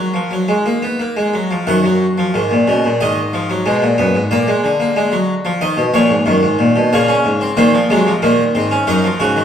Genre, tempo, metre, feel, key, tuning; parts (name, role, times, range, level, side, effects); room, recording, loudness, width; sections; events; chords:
classical, baroque-style 4-part fugue for harpsichord; 92 BPM; 4/4; straight; Eb minor; A4 = 440 Hz
harpsichord; solo; 0.0-9.4 s; Gb2 to Gb5; -13 LUFS; equal
wet stone room reverb, RT60 1.2 s; heard from further back in the room; -13 LUFS; side -8 dB against mid
0.0-1.7 A section; 1.7-9.4 B section
0.0 Ebm; 1.7 Ebm/Gb; 3.0 Fm7b5/Ab; 4.3 Bb7; 5.6 Ebm; 6.9 Bbm; 8.2 Cm7b5